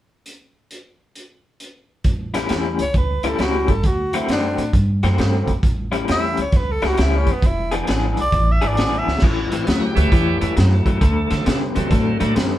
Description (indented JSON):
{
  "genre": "electric blues shuffle",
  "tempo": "134 BPM",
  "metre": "4/4",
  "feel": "swing 65% on 8ths",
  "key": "A mixolydian",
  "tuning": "A4 = 445 Hz",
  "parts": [
    { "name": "crunchy breakbeat drum kit", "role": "drums", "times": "0.3-12.5 s", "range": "crash cymbal, hi-hat, kick drum, snare drum", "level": "-21 LUFS", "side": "equal", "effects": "none" },
    { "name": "upright bass", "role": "bass", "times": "2.0-12.6 s", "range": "E1 to D3", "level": "-21 LUFS", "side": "equal", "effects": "none" },
    { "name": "electric guitar through a small old amp", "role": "riff", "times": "2.3-12.6 s", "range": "A2 to G#4", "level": "-22 LUFS", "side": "left 3 dB", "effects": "tremolo" },
    { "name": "growling tenor saxophone", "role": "melody", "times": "2.8-9.2 s", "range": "B3 to E5", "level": "-23 LUFS", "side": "equal", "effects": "none" },
    { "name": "bright tonewheel organ", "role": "accompaniment", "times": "9.6-12.3 s", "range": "D3 to G4", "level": "-25 LUFS", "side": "right 4 dB", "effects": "slow rotary speaker, overdrive" }
  ],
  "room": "light reverb",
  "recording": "band playing live in one room",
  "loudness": "-16 LUFS",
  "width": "side -13 dB against mid",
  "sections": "0.3-2.1 A section; 2.1-9.2 B section; 9.2-12.6 C section",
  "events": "drum fill 9.0",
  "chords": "0.3 N.C.; 2.1 A7; 3.8 D7; 5.6 A7; 7.4 E7; 9.2 A7; 11.0 D7"
}